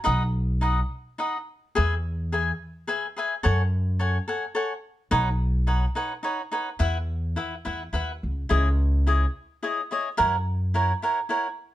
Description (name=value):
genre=mexican folk, mariachi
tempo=107 BPM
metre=3/4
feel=rubato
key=E major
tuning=A4 = 440 Hz
part: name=cavaquinho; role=accompaniment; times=0.0-11.5 s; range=D#4 to G#5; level=-25 LUFS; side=equal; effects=none
part: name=upright bass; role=bass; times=0.1-10.9 s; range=B1 to F#2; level=-23 LUFS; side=equal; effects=none
room=light reverb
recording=dark, warm production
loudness=-23 LUFS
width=side -14 dB against mid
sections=0.0-1.8 A section; 1.8-11.7 B section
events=none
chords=0.0 B; 1.8 E; 3.4 F#madd9; 5.1 Badd9; 6.8 Esus2; 8.5 C#madd9; 10.2 F#7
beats=| 0.05 0.61 1.18 | 1.76 2.33 2.89 | 3.44 4.00 4.55 | 5.11 5.67 6.23 | 6.79 7.36 7.93 | 8.50 9.07 9.63 | 10.19 10.74 11.29